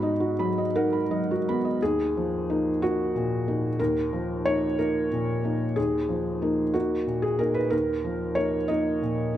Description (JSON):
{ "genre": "neoclassical minimalist piano", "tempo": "61 BPM (dotted quarters)", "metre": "6/8", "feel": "uneven beats, rubato", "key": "Eb minor", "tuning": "A4 = 439 Hz", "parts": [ { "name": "felt-muted upright piano", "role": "solo", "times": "0.0-9.4 s", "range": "Eb2 to Cb6", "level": "-23 LUFS", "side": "equal", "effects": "none" } ], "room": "moderate concert hall reverb, RT60 2.0 s", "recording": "dark, warm production, nothing above 10.6 kHz", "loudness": "-23 LUFS", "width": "side -12 dB against mid", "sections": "0.0-1.8 A section; 1.8-9.4 B section", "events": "none", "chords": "0.0 Abm7; 1.8 Ebmadd9" }